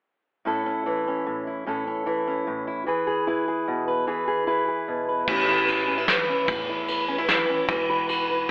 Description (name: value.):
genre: indie folk with a building arrangement.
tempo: 149 BPM.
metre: 3/4.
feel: straight.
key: A major.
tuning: A4 = 441 Hz.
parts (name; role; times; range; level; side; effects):
fingerpicked steel-string acoustic guitar; accompaniment; 0.5-8.5 s; A2 to B4; -26 LUFS; equal; none.
upright bass; bass; 5.3-8.4 s; E1 to E2; -36 LUFS; equal; none.
soft brush drum kit; drums; 5.3-8.2 s; crash cymbal, kick drum, ride cymbal, snare drum; -26 LUFS; equal; none.
room: light reverb.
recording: band playing live in one room, telephone sound.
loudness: -25 LUFS.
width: mono.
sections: 0.5-5.3 A section; 5.3-8.5 B section.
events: none.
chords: 0.5 A; 2.9 E; 5.3 Aadd9; 7.7 E5.